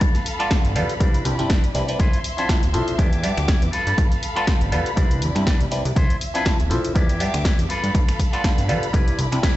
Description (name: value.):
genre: filtered disco house.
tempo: 121 BPM.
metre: 4/4.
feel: swing 56% on 16ths.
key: unclear.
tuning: A4 = 440 Hz.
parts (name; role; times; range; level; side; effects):
warm studio violin section; sustained chords; 0.0-9.6 s; E4 to D6; -31 LUFS; left 1 dB; vintage 12-bit sampler grit, sidechain pumping, low-pass filter.
electric guitar with an envelope filter; riff; 0.0-9.6 s; D4 to D5; -29 LUFS; left 1 dB; sidechain pumping, low-pass filter.
fat analog bass; bass; 0.0-9.4 s; D1 to C3; -24 LUFS; equal; sidechain pumping, low-pass filter.
electronic kick drum; drums; 0.0-9.5 s; none; -20 LUFS; equal; overdrive.
punchy analog drum machine; drums; 0.0-9.5 s; finger snaps, hi-hat, snare drum; -29 LUFS; equal; overdrive, sidechain pumping on hats.
bright clav; accompaniment; 0.4-9.5 s; F3 to B4; -26 LUFS; equal; phaser, sidechain pumping, low-pass filter.
room: light reverb.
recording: played on a big sound system in a bare room, large studio reverb, nothing above 8.0 kHz.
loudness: -18 LUFS.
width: side -15 dB against mid.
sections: 0.0-9.6 A section.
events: none.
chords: 0.0 G9; 1.0 Cmaj9; 2.0 Dm9; 3.0 Em7; 3.7 G9; 5.0 Cmaj9; 6.0 Dm9; 7.0 Em7; 7.7 G9; 8.9 Cmaj9.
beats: | 0.01 0.51 1.00 1.50 | 2.00 2.49 2.99 3.48 | 3.98 4.47 4.97 5.47 | 5.96 6.46 6.95 7.45 | 7.95 8.44 8.94 9.43.